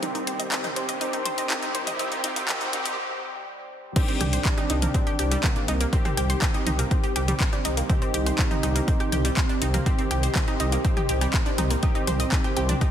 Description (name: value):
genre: melodic techno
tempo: 122 BPM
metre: 4/4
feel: straight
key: C minor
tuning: A4 = 439 Hz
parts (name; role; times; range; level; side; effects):
- expressive synth lead; melody; 0.0-12.9 s; Bb3 to Eb4; -33 LUFS; equal; analog chorus, sidechain pumping, digital delay
- deep dark ambient pad; sustained chords; 0.0-12.9 s; C2 to C6; -37 LUFS; right 3 dB; chorus, built-in reverb, sidechain pumping
- wide unison pluck; arpeggios; 0.0-12.9 s; G3 to Eb6; -32 LUFS; right 1 dB; cassette tape, sidechain pumping, digital delay
- analog synth brass; stabs; 0.0-12.9 s; Eb3 to G4; -32 LUFS; right 1 dB; chorus, sidechain pumping, digital delay
- house drum kit; drums; 0.0-12.9 s; crash cymbal, handclaps, hi-hat, rim click, toms; -29 LUFS; left 1 dB; overdrive, studio reverb
- riser; sound effects; 0.0-3.0 s; none; -35 LUFS; equal; none
- deep dark ambient pad; texture; 0.0-12.9 s; C3 to D6; -37 LUFS; left 1 dB; none
- electronic kick drum; drums; 4.0-12.9 s; none; -24 LUFS; equal; studio reverb
- dark detuned saw bass; bass; 4.2-12.7 s; C2; -25 LUFS; equal; sidechain pumping
room: light reverb, digital ambience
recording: dense, heavily limited modern master, high-pass filter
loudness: -22 LUFS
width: side -10 dB against mid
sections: 0.0-4.0 A section; 4.0-12.9 B section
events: build-up 0.0-4.0; riser 0.0-3.0; filter sweep on analog polysynth 0.0-4.0; break 3.0-4.0; drop 4.0-12.9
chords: 0.0 Eb6/C; 4.0 Cm; 11.8 Eb6/C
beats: | 0.03 0.52 1.01 1.50 | 1.99 2.49 2.98 3.47 | 3.96 4.45 4.95 5.44 | 5.93 6.42 6.91 7.40 | 7.89 8.39 8.88 9.37 | 9.86 10.36 10.85 11.34 | 11.83 12.32 12.81